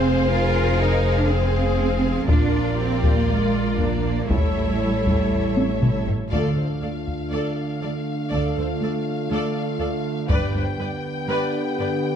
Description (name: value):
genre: cinematic, epic orchestral film score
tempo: 120 BPM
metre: 4/4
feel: straight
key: D dorian from 6.3 s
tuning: A4 = 440 Hz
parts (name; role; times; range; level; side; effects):
- clear symphonic violin section; melody; 0.0-12.2 s; D5 to G5; -34 LUFS; left 4 dB; none
- rich studio violin section; second line; 0.0-11.9 s; F4 to D5; -31 LUFS; left 3 dB; none
- clear symphonic viola section; accompaniment; 0.0-11.9 s; D4 to C5; -31 LUFS; equal; none
- dark French horn section; sustained chords; 0.0-12.2 s; D4 to C#5; -28 LUFS; left 5 dB; none
- rich symphonic cello section; bass; 0.0-11.9 s; D2 to F4; -26 LUFS; right 2 dB; none
- rich symphonic double bass section; bass; 0.0-10.5 s; F1 to D2; -24 LUFS; right 2 dB; none
- taiko ensemble; drums; 2.3-7.3, 10.3-11.2 s; none; -23 LUFS; left 1 dB; none
- bright trombone section; sustained chords; 6.3-12.2 s; D3 to B3; -27 LUFS; right 4 dB; none
- timpani; percussion; 6.3-7.0 s; D3; -29 LUFS; right 1 dB; none
room: moderate scoring stage reverb, RT60 2.0 s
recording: dark, warm production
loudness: -20 LUFS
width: side -8 dB against mid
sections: 0.0-6.3 A section; 6.3-12.2 B section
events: drum fill 5.6-6.3; band accent 6.3-6.8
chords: 0.0 Fm; 2.3 Bb; 4.3 A7; 6.3 Dm; 10.3 G